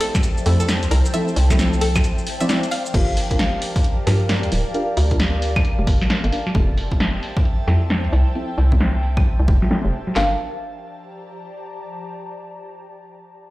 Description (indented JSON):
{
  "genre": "UK garage, two-step garage",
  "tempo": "133 BPM",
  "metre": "4/4",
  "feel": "swing 63% on 16ths",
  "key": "G dorian",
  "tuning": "A4 = 439 Hz",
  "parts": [
    { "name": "string-like resonator pluck", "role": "melody", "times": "0.0-2.9 s", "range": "A4 to F5", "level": "-28 LUFS", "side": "left 1 dB", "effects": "chorus, tape echo" },
    { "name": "airy breathy pad", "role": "sustained chords", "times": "0.0-10.4 s", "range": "Bb4 to A5", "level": "-33 LUFS", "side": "right 1 dB", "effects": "chorus, phaser, sidechain pumping" },
    { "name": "deep mellow chord stab", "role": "stabs", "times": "0.0-10.3 s", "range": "F3 to G5", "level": "-26 LUFS", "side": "equal", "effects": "chorus, tape echo" },
    { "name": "punchy analog drum machine", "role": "drums", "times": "0.0-10.1 s", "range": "cabasa, claves, crash cymbal, hi-hat, snare drum", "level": "-24 LUFS", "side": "equal", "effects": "low-pass filter on hats, low-pass filter on perc, low-pass filter on snare, low-pass filter on cymbals, low-pass filter on room" },
    { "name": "ethereal airy pad", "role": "texture", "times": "0.0-11.9 s", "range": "F3 to Bb5", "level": "-31 LUFS", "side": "left 1 dB", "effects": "ensemble chorus, built-in reverb, sidechain pumping" },
    { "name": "punchy analog drum machine", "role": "drums", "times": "0.1-10.3 s", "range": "handclaps, kick drum, snare drum", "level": "-20 LUFS", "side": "equal", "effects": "none" },
    { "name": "hollow knocking FM bass", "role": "bass", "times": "0.5-10.4 s", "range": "D1 to G2", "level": "-19 LUFS", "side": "equal", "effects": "sidechain pumping" }
  ],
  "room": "light reverb",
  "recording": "played on a big sound system in a bare room, stone room reverb",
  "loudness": "-16 LUFS",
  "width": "side -18 dB against mid",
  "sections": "0.0-2.9 A section; 2.9-10.2 B section; 10.2-12.0 C section",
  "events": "drop 0.0-2.9; break 2.0-2.9; fade-out on ambient pad 2.9-10.2; filter sweep on drum 2.9-10.2; filter sweep on FM bass 2.9-10.2; filter sweep on synth stab 2.9-10.2",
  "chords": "0.0 Fmaj7; 2.9 Gm7; 6.5 Fmaj7; 10.2 Gm7"
}